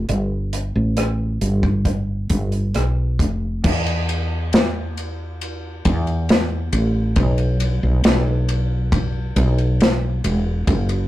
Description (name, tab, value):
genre	pop ballad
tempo	68 BPM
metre	4/4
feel	straight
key	unclear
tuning	A4 = 440 Hz
part	woody fretless electric bass	bass	0.0-11.1 s	E1 to E2	-19 LUFS	equal	none
part	modern studio drum kit	drums	0.1-11.1 s	crash cymbal, hi-hat, kick drum, ride cymbal, rim click, snare drum	-21 LUFS	equal	none
room	moderate small room reverb, RT60 0.5 s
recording	rough rehearsal-room recording, tube saturation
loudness	-17 LUFS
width	side -15 dB against mid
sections	0.0-3.6 A section; 3.6-11.1 B section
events	none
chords	none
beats	| 0.08 0.96 1.85 2.75 | 3.64 4.53 5.41 6.29 | 7.17 8.04 8.93 9.80 | 10.67